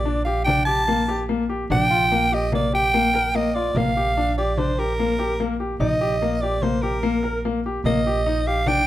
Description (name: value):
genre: contemporary instrumental, chamber music in an uneven meter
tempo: 147 BPM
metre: 5/4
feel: straight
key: Bb major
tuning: A4 = 439 Hz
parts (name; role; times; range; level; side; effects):
- growling soprano saxophone; melody; 0.0-8.9 s; Bb4 to A5; -22 LUFS; right 1 dB; none
- upright bass; bass; 0.0-8.9 s; Bb1; -26 LUFS; right 2 dB; none
- clear grand piano; arpeggios; 0.1-8.8 s; Bb3 to Bb4; -24 LUFS; left 4 dB; none
- frame drum; percussion; 0.1-8.9 s; none; -30 LUFS; left 1 dB; none
room: moderate recital hall reverb, RT60 1.4 s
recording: close, detailed microphones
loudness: -19 LUFS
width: side -14 dB against mid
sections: 0.0-8.9 A section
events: none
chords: 0.0 Bb5; 5.8 Eb/Bb